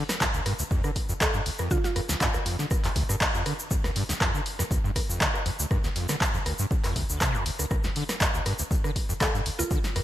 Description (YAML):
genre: acid house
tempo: 120 BPM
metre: 4/4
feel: swing 53% on 16ths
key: D minor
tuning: A4 = 440 Hz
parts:
  - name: overdriven acid bass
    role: riff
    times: 0.0-10.0 s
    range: D2 to D3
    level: -30 LUFS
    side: equal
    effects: ensemble chorus, cassette tape, sidechain pumping
  - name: punchy analog drum machine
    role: drums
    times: 0.1-10.0 s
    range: handclaps, hi-hat, rim click, snare drum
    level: -29 LUFS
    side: equal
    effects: gated reverb
  - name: egg shaker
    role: percussion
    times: 0.1-9.9 s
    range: none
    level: -35 LUFS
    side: equal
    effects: none
  - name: electronic kick drum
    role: drums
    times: 0.2-9.8 s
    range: none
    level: -28 LUFS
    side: equal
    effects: none
  - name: mallet-like synth pluck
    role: melody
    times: 1.2-1.9, 9.2-10.0 s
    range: F4 to A4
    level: -33 LUFS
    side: right 2 dB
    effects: chorus, digital delay
room: light reverb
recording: bright 1980s-style digital production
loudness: -24 LUFS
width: side -13 dB against mid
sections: 0.0-10.0 A section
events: none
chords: 0.0 Dm